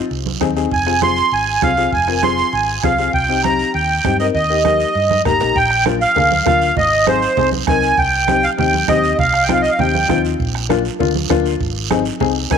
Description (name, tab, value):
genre	latin, cumbia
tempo	198 BPM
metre	4/4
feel	straight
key	unclear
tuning	A4 = 440 Hz
part	warm upright piano	accompaniment	0.0-12.6 s	Bb3 to Bb4	-20 LUFS	left 11 dB	none
part	hollow-body short-scale fingered electric bass	bass	0.1-12.6 s	F1 to G2	-23 LUFS	equal	none
part	guiro	percussion	0.1-12.6 s	none	-29 LUFS	right 13 dB	none
part	congas	percussion	0.3-12.6 s	none	-24 LUFS	right 9 dB	none
part	bombo	percussion	0.4-12.6 s	none	-25 LUFS	right 4 dB	none
part	accordion	melody	0.7-10.2, 12.5-12.6 s	C5 to C6	-15 LUFS	right 2 dB	light tremolo tuning, slapback echo
room	moderate echo chamber reverb, RT60 2.1 s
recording	1960s-style stereo with parts hard left and right, faint mains hum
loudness	-13 LUFS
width	side -7 dB against mid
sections	0.0-5.6 A section; 5.6-12.6 B section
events	drum fill 5.1-5.6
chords	0.0 Ab; 0.7 Fm; 3.1 Cm7; 4.3 Eb; 5.6 Bb; 6.8 Ab; 8.0 Cm; 10.4 Bb; 11.6 Ab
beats	0.11 0.41 | 0.72 1.02 1.32 1.62 | 1.93 2.23 2.53 2.84 | 3.14 3.44 3.74 4.05 | 4.35 4.65 4.96 5.26 | 5.56 5.86 6.17 6.47 | 6.77 7.07 7.38 7.68 | 7.98 8.28 8.58 8.89 | 9.19 9.49 9.79 10.10 | 10.40 10.70 11.00 11.30 | 11.61 11.91 12.21 12.51